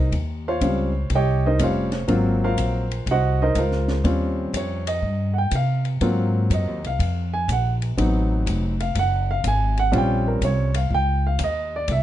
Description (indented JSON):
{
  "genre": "jazz, small-group swing and bop",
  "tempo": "122 BPM",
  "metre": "4/4",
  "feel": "swing 68% on 8ths",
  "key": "unclear",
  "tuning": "A4 = 440 Hz",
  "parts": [
    { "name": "warm baby grand piano", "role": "accompaniment", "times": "0.0-12.0 s", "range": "Gb3 to Ab5", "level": "-23 LUFS", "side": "right 1 dB", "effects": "none" },
    { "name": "upright bass", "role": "bass", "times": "0.0-12.0 s", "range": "F1 to C3", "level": "-22 LUFS", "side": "equal", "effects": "none" },
    { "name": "compact cocktail drum kit", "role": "drums", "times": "0.1-12.0 s", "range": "hi-hat, kick drum, ride cymbal, snare drum", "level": "-30 LUFS", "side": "left 1 dB", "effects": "none" }
  ],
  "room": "light reverb",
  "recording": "dark, warm production, nothing above 10.3 kHz",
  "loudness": "-19 LUFS",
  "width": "side -12 dB against mid",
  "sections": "0.0-12.0 A section",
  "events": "none",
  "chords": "0.0 Eb13; 2.1 Ab13; 4.0 Eb13; 6.0 Ab13; 8.0 Adim7; 9.9 Eb13",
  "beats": "| 0.12 0.61 1.10 1.59 | 2.08 2.57 3.06 3.55 | 4.04 4.53 5.02 5.51 | 6.00 6.50 6.99 7.48 | 7.97 8.46 8.95 9.44 | 9.93 10.42 10.91 11.40 | 11.89"
}